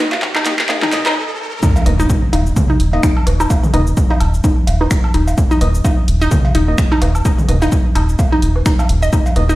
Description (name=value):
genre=minimal techno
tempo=128 BPM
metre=4/4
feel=swing 57% on 16ths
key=unclear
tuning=A4 = 439 Hz
part: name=percussive organ stab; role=stabs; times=0.0-9.4 s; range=Bb3 to Eb5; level=-24 LUFS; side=equal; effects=wide subtle chorus, tape echo
part: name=riser and impact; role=sound effects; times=0.0-3.5 s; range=none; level=-22 LUFS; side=equal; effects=none
part: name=punchy analog drum machine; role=drums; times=0.1-9.6 s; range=cabasa, finger snaps, handclaps, hi-hat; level=-23 LUFS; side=equal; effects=overdrive
part: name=electronic cowbell, woodblock and toms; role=percussion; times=0.1-9.5 s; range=none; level=-23 LUFS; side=right 1 dB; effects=tape echo
part: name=electronic kick drum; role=drums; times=0.2-9.2 s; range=none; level=-15 LUFS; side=equal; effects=overdrive, high-pass filter on kick
part: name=hollow square pluck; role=riff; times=0.4-9.5 s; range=Eb4 to Eb5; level=-20 LUFS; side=equal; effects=chorus, sidechain pumping, tape echo
part: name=round analog bass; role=bass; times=1.9-9.6 s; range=Eb1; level=-15 LUFS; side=equal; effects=sidechain pumping
room=moderate studio reverb, RT60 0.6 s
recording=played on a big sound system in a bare room, stone room reverb, high-pass filter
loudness=-12 LUFS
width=side -17 dB against mid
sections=0.0-1.6 A section; 1.6-9.6 B section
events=build-up 0.0-1.6; drum fill 0.0-1.2; riser 0.0-1.6; filter sweep on synth stab 0.0-1.6; stop 1.2-1.6; drop 1.6-9.6; impact 1.6-3.5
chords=0.0 Eb5